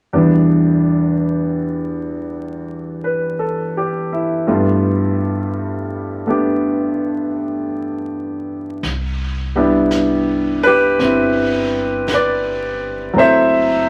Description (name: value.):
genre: jazz ballad.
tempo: 55 BPM.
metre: 4/4.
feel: swing 67% on 8ths.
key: C major.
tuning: A4 = 440 Hz.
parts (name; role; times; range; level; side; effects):
clear concert grand piano; accompaniment; 0.1-13.9 s; E2 to E5; -18 LUFS; equal; none.
upright bass; bass; 8.8-13.9 s; F#1 to C2; -30 LUFS; equal; none.
vintage brush drum kit; drums; 8.8-13.9 s; brushed snare drum, hi-hat, snare drum; -32 LUFS; equal; none.
room: wet studio reverb, RT60 0.7 s.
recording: vinyl crackle.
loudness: -18 LUFS.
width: mono.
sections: 0.1-8.8 A section; 8.8-13.9 B section.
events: none.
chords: 0.1 Em7; 4.5 G9; 8.8 Cmaj9; 13.2 F#m7b5.